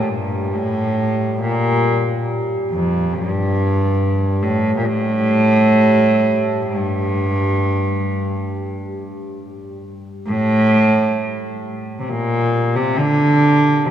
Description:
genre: caucasian folk, Caucasian lament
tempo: free time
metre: none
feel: none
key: G minor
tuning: A4 = 439 Hz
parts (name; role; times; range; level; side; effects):
- rich cello; melody; 0.0-13.9 s; F2 to D3; -16 LUFS; equal; none
- deep dark ambient pad; drone; 0.0-13.9 s; G3; -27 LUFS; equal; chorus, built-in reverb
room: wet cathedral reverb, RT60 5.0 s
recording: none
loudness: -15 LUFS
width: side -10 dB against mid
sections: 0.0-10.3 A section; 10.3-13.9 B section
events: none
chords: none

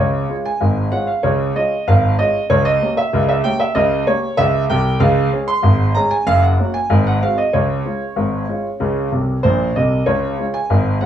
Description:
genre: ragtime piano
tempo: 95 BPM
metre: 2/4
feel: straight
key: Db major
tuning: A4 = 436 Hz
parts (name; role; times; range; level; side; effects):
- clear concert grand piano; solo; 0.0-11.1 s; Gb1 to C6; -14 LUFS; equal; none
room: wet booth ambience, RT60 0.2 s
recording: small room ambience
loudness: -14 LUFS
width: side -10 dB against mid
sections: 0.0-10.1 A section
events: grand piano fill 9.1-10.1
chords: 0.0 Db; 2.5 C7b9; 5.0 Db5; 6.3 Gb; 6.9 Ab7; 7.5 Db

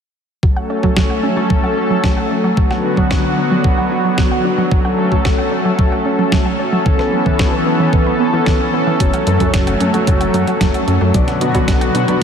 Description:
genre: italo disco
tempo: 112 BPM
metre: 4/4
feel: straight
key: F# minor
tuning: A4 = 440 Hz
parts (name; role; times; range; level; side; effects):
- lush unison pad; sustained chords; 0.4-12.2 s; D3 to A4; -16 LUFS; equal; chorus, vintage 12-bit sampler grit
- analog pluck; arpeggios; 0.4-12.1 s; E3 to F#5; -20 LUFS; right 3 dB; chorus, ping-pong delay
- electronic kick drum; drums; 0.4-11.8 s; none; -16 LUFS; equal; none
- clean 12-bit digital drum machine; drums; 1.0-12.2 s; hi-hat, snare drum; -24 LUFS; equal; none
- warm grand piano; stabs; 9.0-12.2 s; B2 to D5; -22 LUFS; left 3 dB; ping-pong delay
- chorused synth bass; bass; 9.0-12.1 s; F#1 to B2; -19 LUFS; equal; ping-pong delay
room: wet cathedral reverb, RT60 6.4 s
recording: dreamy mix soaked in reverb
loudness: -13 LUFS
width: side -7 dB against mid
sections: 0.4-12.2 A section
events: filter sweep on synth arpeggio sound 0.4-12.2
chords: 0.4 F#m; 2.6 Bm; 4.7 F#m; 6.9 Aadd9; 9.0 F#m; 11.1 Bm

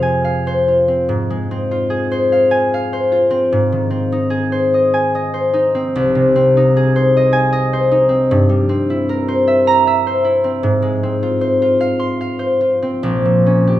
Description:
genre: classical, solo harp piece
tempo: 50 BPM (dotted quarters)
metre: 6/8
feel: uneven beats, rubato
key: F minor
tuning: A4 = 441 Hz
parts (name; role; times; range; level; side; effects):
- concert harp; solo; 0.0-13.8 s; Bb1 to C6; -13 LUFS; equal; none
room: wet recital hall reverb, RT60 1.6 s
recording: minimal, uncompressed stereo recording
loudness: -13 LUFS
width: side -13 dB against mid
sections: 0.0-13.8 A section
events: none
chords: 0.0 Fm; 1.1 Fm/Ab; 3.5 Ab; 6.0 Ab/C; 8.3 C7/G; 10.6 Fm/Ab; 13.0 Gdim/Bb

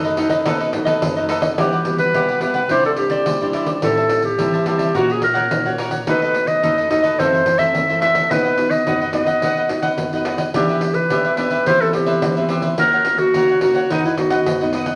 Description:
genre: samba and choro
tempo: 107 BPM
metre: 4/4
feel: straight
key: unclear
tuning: A4 = 444 Hz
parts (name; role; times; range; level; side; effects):
- cavaquinho; accompaniment; 0.0-15.0 s; D4 to A5; -25 LUFS; equal; none
- nylon-string guitar; accompaniment; 0.0-15.0 s; F#2 to G4; -26 LUFS; equal; none
- pandeiro; percussion; 0.0-15.0 s; none; -27 LUFS; equal; none
- warm clarinet; melody; 1.6-14.7 s; D#4 to E5; -20 LUFS; equal; none
room: wet large studio reverb, RT60 1.0 s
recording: none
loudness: -18 LUFS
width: mono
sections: 0.0-1.6 A section; 1.6-15.0 B section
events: none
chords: 0.0 B7; 1.6 Emadd9; 2.7 Cadd9; 3.8 Am7; 4.9 F#/A#; 6.1 B7; 7.2 F#m7b5; 8.3 B; 10.5 Em7; 11.7 Cmaj7/E; 12.8 F#; 13.9 B/F#

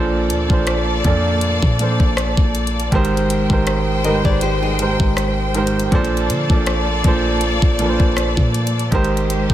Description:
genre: contemporary R&B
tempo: 80 BPM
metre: 4/4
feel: swing 54% on 16ths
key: Bb major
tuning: A4 = 436 Hz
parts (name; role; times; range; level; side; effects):
- warm grand piano; accompaniment; 0.0-9.5 s; Ab2 to D5; -19 LUFS; right 2 dB; none
- rich studio string section; sustained chords; 0.0-9.5 s; Ab3 to G5; -23 LUFS; left 2 dB; sidechain pumping
- clean 808-style bass; bass; 0.0-9.5 s; Ab1 to D3; -21 LUFS; equal; none
- smooth R&B drum kit; drums; 0.3-9.5 s; hi-hat, kick drum, rim click; -19 LUFS; equal; none
- nylon-string guitar; arpeggios; 4.0-5.7 s; Eb4 to Eb5; -24 LUFS; left 6 dB; ping-pong delay
room: studio ambience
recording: none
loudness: -15 LUFS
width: side -12 dB against mid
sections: 0.0-9.5 A section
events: none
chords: 0.0 Bbmaj7; 2.9 Abmaj7; 5.9 Bbmaj7; 8.9 Abmaj7

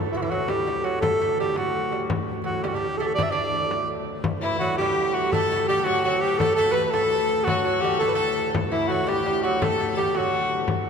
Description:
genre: medieval dance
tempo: 112 BPM (dotted quarters)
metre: 6/8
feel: straight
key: D major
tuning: A4 = 440 Hz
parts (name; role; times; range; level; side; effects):
- hand-pumped harmonium; drone; 0.0-10.9 s; D2 to A2; -33 LUFS; left 1 dB; none
- clear alto saxophone; melody; 0.1-10.7 s; E4 to E5; -23 LUFS; equal; none
- lute; second line; 0.1-10.7 s; E3 to D4; -30 LUFS; right 4 dB; none
- frame drum; percussion; 0.5-10.8 s; none; -30 LUFS; left 2 dB; none
- rich fiddle; second line; 4.4-10.7 s; E4 to B4; -28 LUFS; left 4 dB; none
room: wet cathedral reverb, RT60 4.5 s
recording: none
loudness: -21 LUFS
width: side -6 dB against mid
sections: 0.0-4.3 A section; 4.3-10.9 A section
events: none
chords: none

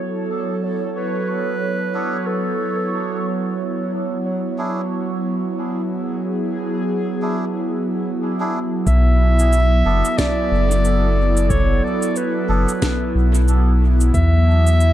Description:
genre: ambient dub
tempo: 91 BPM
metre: 4/4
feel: swing 59% on 16ths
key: B dorian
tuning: A4 = 440 Hz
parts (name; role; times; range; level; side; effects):
- mellow clarinet; melody; 0.0-3.3, 8.9-14.9 s; A4 to E5; -24 LUFS; equal; dub echo
- airy breathy pad; sustained chords; 0.0-14.9 s; F#3 to A4; -22 LUFS; right 1 dB; chorus
- bubbling stepped-filter texture; texture; 0.0-8.9 s; C#5; -30 LUFS; right 3 dB; chorus, built-in reverb
- melodica; stabs; 1.9-12.7 s; B3 to A4; -30 LUFS; right 1 dB; dub echo
- warm sub bass; bass; 8.9-14.9 s; F#1 to E2; -15 LUFS; equal; tube saturation
- electronic kick drum; drums; 8.9-14.3 s; none; -22 LUFS; equal; none
- electronic shaker and snare drum; drums; 8.9-14.9 s; none; -28 LUFS; equal; overdrive, dub echo
room: light reverb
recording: echo-heavy mix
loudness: -17 LUFS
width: side -12 dB against mid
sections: 0.0-8.9 A section; 8.9-14.9 B section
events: none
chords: 0.0 B7(no3); 3.6 E7; 8.9 Bm7; 14.1 E

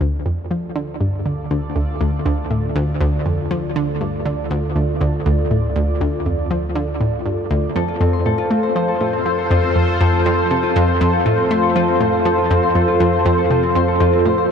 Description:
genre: ambient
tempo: 120 BPM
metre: 4/4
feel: straight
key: D minor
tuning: A4 = 440 Hz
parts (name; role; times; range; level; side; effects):
- sweeping resonant pad; sustained chords; 0.0-14.5 s; F4 to D5; -20 LUFS; equal; chorus
- analog pluck; riff; 0.0-14.4 s; D2 to A3; -18 LUFS; equal; chorus, analog delay
- analog drone; bass; 1.0-14.5 s; D2 to F2; -26 LUFS; equal; chorus, phaser
- concert harp; arpeggios; 7.8-14.5 s; C4 to C6; -22 LUFS; left 4 dB; auto-pan, analog delay
room: moderate huge ambient reverb, RT60 7.6 s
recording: none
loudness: -16 LUFS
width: side -7 dB against mid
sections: 0.0-14.5 A section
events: fade-in on analog synth pad 0.0-14.5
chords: 0.0 Dm; 7.8 F

